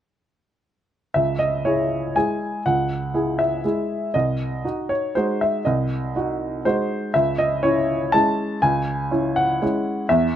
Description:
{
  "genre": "classical, piano waltz",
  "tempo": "121 BPM",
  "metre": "3/4",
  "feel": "rubato",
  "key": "C# minor",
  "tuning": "A4 = 440 Hz",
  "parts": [
    { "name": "clear upright piano", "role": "solo", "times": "1.1-10.4 s", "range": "B#1 to A5", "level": "-19 LUFS", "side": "equal", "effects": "none" }
  ],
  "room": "light reverb",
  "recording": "close, detailed microphones",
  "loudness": "-19 LUFS",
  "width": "side -10 dB against mid",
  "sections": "1.1-10.4 A section",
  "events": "none",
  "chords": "1.1 C#m; 4.1 G#7/B#; 7.1 C#m"
}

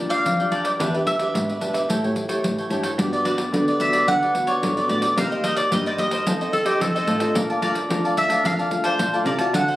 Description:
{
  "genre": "samba and choro",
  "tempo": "110 BPM",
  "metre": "4/4",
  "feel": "straight",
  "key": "unclear",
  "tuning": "A4 = 438 Hz",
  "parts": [
    { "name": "mandolin", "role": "melody", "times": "0.0-9.8 s", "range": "C5 to F#5", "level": "-23 LUFS", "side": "equal", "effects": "none" },
    { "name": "nylon-string guitar", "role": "accompaniment", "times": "0.0-9.8 s", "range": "Bb2 to C#5", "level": "-27 LUFS", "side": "left 2 dB", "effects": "none" },
    { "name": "warm cello", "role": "bass", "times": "0.0-9.8 s", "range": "E2 to D3", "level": "-27 LUFS", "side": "equal", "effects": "none" },
    { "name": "cavaquinho", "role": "accompaniment", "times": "0.1-9.8 s", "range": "D4 to A5", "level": "-25 LUFS", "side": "equal", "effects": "none" },
    { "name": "pandeiro", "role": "percussion", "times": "0.1-9.8 s", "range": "none", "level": "-29 LUFS", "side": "equal", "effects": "none" },
    { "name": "breathy tenor saxophone", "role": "second line", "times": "6.5-7.5 s", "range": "G4 to A4", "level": "-22 LUFS", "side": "equal", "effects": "none" }
  ],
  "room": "moderate studio ambience, RT60 0.5 s",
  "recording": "recorded on a phone in the room, club reverb",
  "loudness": "-19 LUFS",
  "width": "side -16 dB against mid",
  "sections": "0.0-3.0 A section; 3.0-9.8 B section",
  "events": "none",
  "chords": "0.0 Bb6; 0.8 Em7; 1.9 A7; 3.0 Gmaj7; 5.2 Cm7; 6.3 F7; 7.4 Bbmaj7"
}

